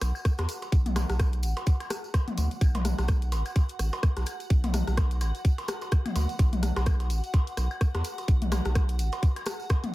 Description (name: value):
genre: minimal techno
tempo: 127 BPM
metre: 4/4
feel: swing 58% on 16ths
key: unclear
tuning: A4 = 440 Hz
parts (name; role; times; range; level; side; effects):
- saturated sub bass; bass; 0.0-9.1 s; A1 to E2; -27 LUFS; equal; sidechain pumping
- garage drum kit; drums; 0.0-9.9 s; hi-hat, rim click; -37 LUFS; equal; none
- minimal click drum kit; percussion; 0.0-9.9 s; claves, percussion blips, rim click, toms; -34 LUFS; left 1 dB; overdrive
- tambourine; percussion; 0.0-9.9 s; none; -45 LUFS; right 2 dB; none
- granular cloud pad; texture; 0.0-9.9 s; F#5; -41 LUFS; right 1 dB; built-in reverb, sidechain pumping
- electronic kick drum; drums; 0.3-9.8 s; none; -23 LUFS; equal; none
room: little or no reverb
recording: none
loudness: -24 LUFS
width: side -18 dB against mid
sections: 0.0-9.9 A section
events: none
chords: 0.0 B5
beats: 0.25 | 0.72 1.20 1.67 2.14 | 2.61 3.08 3.56 4.03 | 4.50 4.97 5.45 5.92 | 6.39 6.87 7.34 7.81 | 8.28 8.76 9.23 9.70